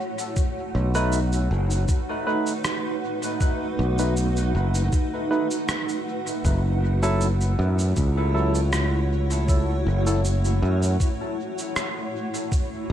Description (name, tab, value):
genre	ambient dub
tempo	79 BPM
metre	4/4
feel	swing 53% on 16ths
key	F# dorian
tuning	A4 = 441 Hz
part	granular cloud pad	sustained chords	0.0-12.9 s	A3 to F#5	-28 LUFS	equal	built-in reverb
part	electronic shaker and rim click	drums	0.2-12.7 s	none	-32 LUFS	right 1 dB	dub echo
part	electronic kick drum	drums	0.4-12.7 s	none	-23 LUFS	equal	none
part	modern bright fingered electric bass	bass	0.7-12.9 s	F#1 to F#2	-21 LUFS	equal	tube saturation
part	barky tine electric piano	stabs	0.9-10.2 s	F#3 to B4	-30 LUFS	equal	wide subtle chorus, dub echo
room	light reverb, digital ambience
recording	none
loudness	-21 LUFS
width	side -10 dB against mid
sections	0.0-12.9 A section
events	none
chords	0.4 B7; 6.4 F#m7